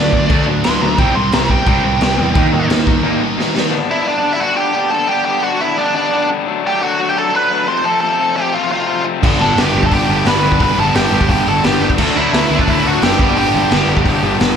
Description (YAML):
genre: punk rock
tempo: 174 BPM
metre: 4/4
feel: straight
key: G major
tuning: A4 = 440 Hz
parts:
  - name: biting lead guitar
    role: melody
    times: 0.0-14.4 s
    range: D4 to C6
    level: -17 LUFS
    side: right 2 dB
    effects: overdrive, slapback echo
  - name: crunchy overdriven guitar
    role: riff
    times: 0.0-14.6 s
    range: F2 to D4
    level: -20 LUFS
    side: left 10 dB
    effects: slapback echo
  - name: crunchy overdriven guitar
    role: riff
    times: 0.0-3.7, 9.2-14.6 s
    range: G2 to Eb4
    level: -21 LUFS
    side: right 10 dB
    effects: slapback echo
  - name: sludgy distorted guitar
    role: riff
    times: 0.0-3.7, 9.2-14.6 s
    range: G2 to Eb4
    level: -20 LUFS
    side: left 1 dB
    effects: overdrive, slapback echo
  - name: fuzz picked electric bass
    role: bass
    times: 0.0-3.0, 9.2-14.5 s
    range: F#1 to E2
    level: -19 LUFS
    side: equal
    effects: overdrive
  - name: raw garage drum kit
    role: drums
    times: 0.1-3.6, 9.2-14.5 s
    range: crash cymbal, hi-hat, kick drum, snare drum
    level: -17 LUFS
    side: equal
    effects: none
room: light reverb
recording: live gig heard through the venue's PA, club reverb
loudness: -12 LUFS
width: side -7 dB against mid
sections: 0.0-3.7 A section; 3.7-14.6 B section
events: lead electric guitar solo 0.0-3.7; break 3.0-3.7; drum fill 3.4-3.7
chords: 0.0 D; 1.0 C5; 2.4 Eb; 3.7 G; 6.5 D; 7.7 F; 9.2 G; 12.0 D; 13.2 G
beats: 0.29 0.64 | 0.98 1.32 1.67 2.01 | 2.35 2.70 3.04 3.39 | 3.73 4.07 4.42 4.76 | 5.10 5.45 5.79 6.13 | 6.48 6.82 7.17 7.51 | 7.85 8.20 8.54 8.88 | 9.23 9.57 9.92 10.26 | 10.61 10.95 11.29 11.64 | 11.98 12.33 12.67 13.02 | 13.36 13.70 14.05 14.39